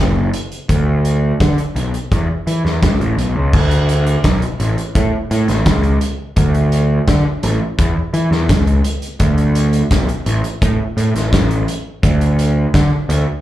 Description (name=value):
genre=quiet-loud alternative rock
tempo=85 BPM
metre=4/4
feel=straight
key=unclear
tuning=A4 = 440 Hz
part: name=fuzz picked electric bass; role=bass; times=0.0-13.2 s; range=F#1 to E3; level=-14 LUFS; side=equal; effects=overdrive
part: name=loose indie drum kit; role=drums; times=0.3-13.3 s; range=crash cymbal, hi-hat, kick drum, snare drum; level=-18 LUFS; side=equal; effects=none
room=little or no reverb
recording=live gig heard through the venue's PA, club reverb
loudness=-13 LUFS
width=side -14 dB against mid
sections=0.0-3.5 A section; 3.5-13.4 A section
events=none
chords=none